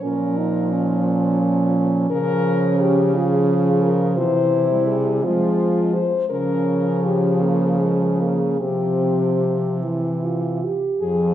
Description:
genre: classical, lyrical piece for horn quartet.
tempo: 48-59 BPM (dotted quarters).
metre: 6/8.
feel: rubato.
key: unclear.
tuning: A4 = 442 Hz.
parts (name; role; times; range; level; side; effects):
mellow French horn; melody; 0.0-11.3 s; F4 to C5; -22 LUFS; left 6 dB; none.
mellow French horn; second line; 0.0-11.0 s; Ab3 to G4; -24 LUFS; right 4 dB; none.
mellow French horn; accompaniment; 0.0-11.3 s; E3 to Ab3; -22 LUFS; equal; none.
warm French horn; bass; 0.0-11.3 s; F2 to F3; -24 LUFS; right 2 dB; none.
room: wet recital hall reverb, RT60 1.5 s.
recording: recorded in a church or concert hall.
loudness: -17 LUFS.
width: side -11 dB against mid.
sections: 0.0-11.0 A section.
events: none.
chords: 0.0 Bbm; 2.1 Db; 4.2 C; 5.2 Fm; 6.3 Bbm/Db; 8.6 Csus4; 9.8 C.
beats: | 0.02 1.06 | 2.10 3.14 | 4.17 5.23 | 6.31 7.42 | 8.61 9.81 | 11.02.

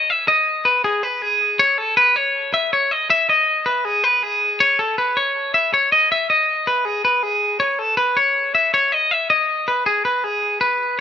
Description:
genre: rock.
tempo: 160 BPM.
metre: 4/4.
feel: straight.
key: unclear.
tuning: A4 = 440 Hz.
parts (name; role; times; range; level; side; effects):
twangy electric guitar; solo; 0.0-11.0 s; G#4 to E5; -16 LUFS; left 1 dB; tape echo.
room: light reverb.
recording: rough home demo mix.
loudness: -15 LUFS.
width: side -9 dB against mid.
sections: 0.0-10.6 A section.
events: none.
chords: none.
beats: | 0.09 0.47 0.85 1.22 | 1.60 1.97 2.35 2.73 | 3.10 3.48 3.85 4.23 | 4.61 4.98 5.36 5.73 | 6.11 6.48 6.86 7.23 | 7.61 7.98 8.36 8.73 | 9.11 9.48 9.86 10.23 | 10.61 10.98.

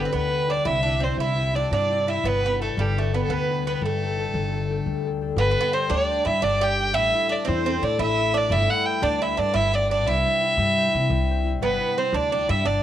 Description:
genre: celtic folk, Celtic slip jig.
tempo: 115 BPM (dotted quarters).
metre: 9/8.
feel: straight.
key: G major.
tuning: A4 = 440 Hz.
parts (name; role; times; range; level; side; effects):
rich fiddle; melody; 0.0-12.8 s; G4 to G5; -24 LUFS; equal; cassette tape, plate reverb.
Irish bouzouki; second line; 0.0-12.8 s; G3 to G4; -28 LUFS; right 9 dB; cassette tape, plate reverb.
concert harp; accompaniment; 0.0-12.8 s; C3 to C5; -29 LUFS; left 8 dB; cassette tape.
upright bass; bass; 0.0-12.8 s; G1 to C3; -26 LUFS; equal; none.
room: light reverb.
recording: home recording on cassette.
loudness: -20 LUFS.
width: side -11 dB against mid.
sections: 0.0-5.4 A section; 5.4-12.8 B section.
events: none.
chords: 0.0 G; 0.7 Cadd9; 2.2 G; 3.8 Gsus2; 5.4 G; 7.0 Am; 8.5 G; 10.1 C; 11.6 G.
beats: 0.12 | 0.65 1.18 1.71 | 2.23 2.76 3.29 | 3.81 4.34 4.86 | 5.39 5.91 6.43 | 6.95 7.47 7.99 | 8.51 9.03 9.55 | 10.07 10.59 11.11 | 11.62 12.14 12.66.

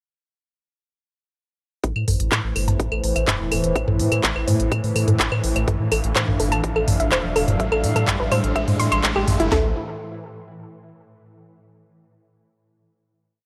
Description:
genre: melodic techno.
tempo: 125 BPM.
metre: 4/4.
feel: straight.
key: A minor.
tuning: A4 = 439 Hz.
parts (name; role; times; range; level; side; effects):
dark analog pad; sustained chords; 1.8-9.7 s; A3 to F5; -30 LUFS; equal; chorus, phaser, sidechain pumping.
soft round pluck; arpeggios; 1.8-9.7 s; E4 to C6; -28 LUFS; equal; chorus, sidechain pumping, tape echo.
round analog bass; bass; 1.8-9.7 s; E1 to A2; -26 LUFS; equal; sidechain pumping.
swarming drone; drone; 2.3-9.6 s; A2 to E3; -34 LUFS; equal; built-in reverb, sidechain pumping.
house drum kit; drums; 1.8-9.6 s; kick drum, snare drum, toms; -28 LUFS; equal; high-pass filter on kick, high-pass filter on snare, high-pass filter on toms.
house drum kit; drums; 1.8-9.5 s; claves, handclaps, hi-hat, toms; -25 LUFS; equal; sidechain pumping on hats, sidechain pumping on perc, sidechain pumping on toms.
riser; sound effects; 4.8-9.5 s; none; -35 LUFS; equal; none.
room: light reverb.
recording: dry, gritty hardware recording, cassette tape.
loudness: -21 LUFS.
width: mono.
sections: 1.8-9.5 build; 9.5-11.4 final chord.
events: build-up 1.8-9.5; filter sweep on synth arpeggio sound 1.8-9.5; riser 4.8-9.5.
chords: 1.8 Am; 5.7 Dm; 9.5 Am.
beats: | 1.84 2.32 2.80 3.28 | 3.76 4.24 4.72 5.20 | 5.68 6.16 6.64 7.12 | 7.60 8.08 8.56 9.04 | 9.52.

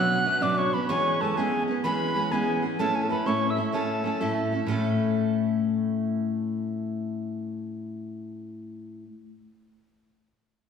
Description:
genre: celtic folk.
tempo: 127 BPM (dotted quarters).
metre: 12/8.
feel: straight.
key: A major.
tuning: A4 = 439 Hz.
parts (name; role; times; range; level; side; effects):
mellow hollow wooden whistle; melody; 0.0-4.3 s; G#5 to F#6; -27 LUFS; right 1 dB; none.
baroque flute; second line; 0.0-4.3 s; G#4 to F#5; -32 LUFS; left 4 dB; none.
picked steel-string acoustic guitar; accompaniment; 0.0-9.1 s; A2 to A4; -26 LUFS; left 1 dB; none.
room: wet scoring stage reverb, RT60 1.9 s.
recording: recorded in a church or concert hall.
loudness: -24 LUFS.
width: side -7 dB against mid.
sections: 0.0-4.7 A section; 4.7-8.5 B section.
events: none.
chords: 0.0 Bmadd9; 0.9 E6; 2.8 A.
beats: 0.42 | 0.89 1.37 1.84 2.31 | 2.79 3.26 3.73 4.21 | 4.68 5.15 5.63 6.10 | 6.57 7.04 7.52 7.99.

